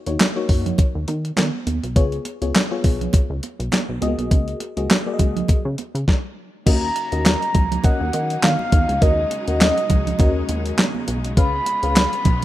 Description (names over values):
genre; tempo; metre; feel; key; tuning
early-eighties boogie funk; 102 BPM; 4/4; swing 56% on 16ths; Eb minor; A4 = 440 Hz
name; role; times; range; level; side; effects
FM electric piano with tremolo; accompaniment; 0.1-12.1 s; Ab3 to Gb5; -27 LUFS; left 4 dB; phaser
plucky analog bass; bass; 0.1-12.4 s; Cb2 to Eb3; -24 LUFS; equal; none
crisp 8-bit digital drum machine; drums; 0.1-12.4 s; crash cymbal, handclaps, hi-hat, kick drum, snare drum; -18 LUFS; equal; none
congas; percussion; 0.2-12.4 s; none; -28 LUFS; right 8 dB; none
mellow horn-like synth lead; melody; 6.7-12.4 s; Eb5 to Cb6; -22 LUFS; equal; chorus, slapback echo
bright studio string section; sustained chords; 6.7-12.4 s; Db3 to F4; -31 LUFS; left 2 dB; none
room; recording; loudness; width
light reverb, digital ambience; rough home demo mix; -17 LUFS; side -14 dB against mid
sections
0.0-6.7 A section; 6.7-12.4 B section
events
none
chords
0.0 Ebm7; 2.0 Db7; 4.0 Gb69; 6.7 Ebm7; 11.4 Db7